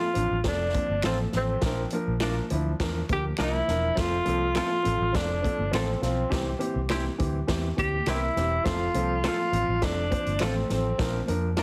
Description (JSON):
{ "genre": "uptempo 1960s-style soul", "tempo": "102 BPM", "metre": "4/4", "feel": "straight", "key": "F major", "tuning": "A4 = 439 Hz", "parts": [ { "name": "breathy tenor saxophone", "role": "melody", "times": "0.0-11.3 s", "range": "C4 to G4", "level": "-30 LUFS", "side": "equal", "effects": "none" }, { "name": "dark grand piano", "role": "accompaniment", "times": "0.0-11.6 s", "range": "E3 to C5", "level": "-34 LUFS", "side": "equal", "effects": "none" }, { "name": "congas", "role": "percussion", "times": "0.0-11.4 s", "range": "none", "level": "-43 LUFS", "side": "equal", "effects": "none" }, { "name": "swinging big-band drum kit", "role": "drums", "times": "0.1-11.6 s", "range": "hi-hat, kick drum, snare drum", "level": "-34 LUFS", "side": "equal", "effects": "none" }, { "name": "vintage muted fingered electric bass", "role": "bass", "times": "0.2-11.6 s", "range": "E1 to F2", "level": "-32 LUFS", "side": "equal", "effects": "none" }, { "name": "finger snaps", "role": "percussion", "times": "1.0-11.6 s", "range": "none", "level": "-41 LUFS", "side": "equal", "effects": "none" }, { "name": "semi-hollow electric guitar", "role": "stabs", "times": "1.1-11.6 s", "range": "C4 to Bb4", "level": "-37 LUFS", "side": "equal", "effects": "none" } ], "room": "light reverb, studio reverb", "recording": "heavily compressed radio sound, multiband compression", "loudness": "-27 LUFS", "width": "mono", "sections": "0.0-11.6 A section", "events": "none", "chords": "0.0 F; 1.6 Bb; 4.0 F; 6.3 C; 8.7 F; 11.0 Bb" }